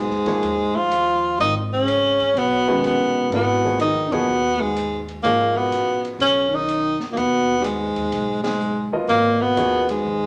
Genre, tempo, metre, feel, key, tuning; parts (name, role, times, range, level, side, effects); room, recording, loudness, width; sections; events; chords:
modal jazz; 125 BPM; 4/4; swing 67% on 8ths; G# dorian; A4 = 440 Hz
warm tenor saxophone; melody; 0.0-10.3 s; G3 to E#4; -22 LUFS; equal
breathy trombone; second line; 0.0-10.3 s; G2 to E#3; -29 LUFS; equal
upright bass; bass; 0.0-10.3 s; F#1 to D#2; -34 LUFS; equal
open jazz drum kit; drums; 0.1-10.0 s; hi-hat, kick drum, ride cymbal, snare drum; -41 LUFS; equal
warm upright piano; accompaniment; 0.3-9.9 s; D#3 to D#5; -28 LUFS; equal
wet large studio reverb, RT60 1.2 s; -20 LUFS; mono
0.0-10.3 A section
band accent 4.0, 8.4
0.0 G#m69